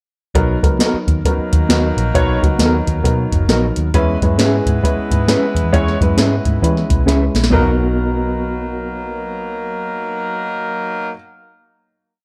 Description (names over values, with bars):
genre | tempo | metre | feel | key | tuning
uptempo 1960s-style soul | 134 BPM | 4/4 | swing 62% on 8ths | B major | A4 = 440 Hz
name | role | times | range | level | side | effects
dark upright piano | accompaniment | 0.3-11.1 s | F#3 to C#5 | -23 LUFS | equal | none
vintage muted picked electric bass | bass | 0.3-11.1 s | F#1 to E3 | -21 LUFS | equal | none
soft vintage rhythm box | drums | 0.4-7.7 s | hi-hat, kick drum, snare drum, toms | -20 LUFS | equal | none
mellow electric guitar | stabs | 0.8-11.2 s | B3 to E5 | -22 LUFS | equal | harmonic tremolo
mellow horn section | second line | 1.2-11.1 s | F#3 to B4 | -27 LUFS | equal | none
room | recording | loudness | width
little or no reverb | none | -16 LUFS | mono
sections
0.3-7.5 verse; 7.5-11.1 final chord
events
drum fill 7.1-7.5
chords
0.3 Bmaj7; 3.9 E6; 7.5 Bmaj7